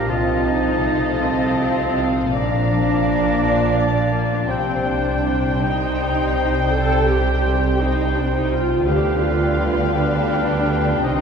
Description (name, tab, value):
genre	classical, slow romantic movement for symphony orchestra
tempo	51-57 BPM (dotted quarters)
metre	12/8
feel	rubato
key	unclear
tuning	A4 = 439 Hz
part	muted studio violin section	melody	0.0-11.2 s	F5 to G5	-27 LUFS	left 5 dB	none
part	clear clarinet	second line	0.0-11.2 s	B4 to Eb5	-31 LUFS	equal	none
part	clear oboe	second line	0.0-11.2 s	Eb5 to Bb5	-28 LUFS	equal	none
part	muted studio violin section	second line	0.0-11.2 s	A4 to G5	-30 LUFS	left 3 dB	none
part	muted studio viola section	accompaniment	0.0-11.2 s	Bb3 to A4	-23 LUFS	right 1 dB	none
part	warm bassoon	accompaniment	0.0-11.2 s	F3 to G3	-29 LUFS	equal	none
part	mellow French horn section	sustained chords	0.0-11.2 s	F3 to Eb4	-30 LUFS	left 4 dB	none
part	concert harp	arpeggios	0.0-11.2 s	Bb2 to Eb5	-28 LUFS	left 5 dB	none
part	muted studio cello section	bass	0.0-11.2 s	Bb2 to D3	-25 LUFS	right 2 dB	none
part	muted studio double bass section	bass	0.0-11.2 s	Bb1 to D2	-24 LUFS	right 2 dB	none
room	wet cathedral reverb, RT60 4.8 s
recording	recorded in a church or concert hall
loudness	-17 LUFS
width	side -6 dB against mid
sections	0.0-11.2 A section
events	none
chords	0.1 F7/C; 2.3 Bb; 4.5 Cm; 8.9 G7/D